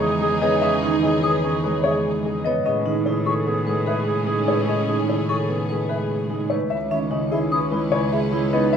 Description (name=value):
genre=classical, minimalist pattern music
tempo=148 BPM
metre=5/4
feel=straight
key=C# minor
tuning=A4 = 441 Hz
part: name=dark baby grand piano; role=melody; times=0.0-8.8 s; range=G#4 to E5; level=-27 LUFS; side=left 7 dB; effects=none
part: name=warm clarinet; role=second line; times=0.0-8.8 s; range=E4 to G#4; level=-27 LUFS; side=right 3 dB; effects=none
part: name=concert harp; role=accompaniment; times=0.0-8.8 s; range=C#3 to C#4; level=-25 LUFS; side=left 1 dB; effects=none
part: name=dark chamber string section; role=sustained chords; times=0.0-8.8 s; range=C#4 to B4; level=-31 LUFS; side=left 3 dB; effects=none
part: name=vibraphone with medium hard mallets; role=arpeggios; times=0.0-8.8 s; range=C#4 to C#5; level=-26 LUFS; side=right 6 dB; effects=none
part: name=rich cello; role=bass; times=0.0-8.8 s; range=C#2 to A2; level=-27 LUFS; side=right 2 dB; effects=none
part: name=mellow hollow concert flute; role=arpeggios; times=1.2-8.2 s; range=E5 to D#6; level=-28 LUFS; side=left 3 dB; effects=none
room=moderate large studio reverb, RT60 1.2 s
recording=none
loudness=-19 LUFS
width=side -8 dB against mid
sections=0.0-6.7 A section; 6.7-8.8 B section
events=none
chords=0.0 Emaj7; 2.7 Amaj9; 6.7 C#m7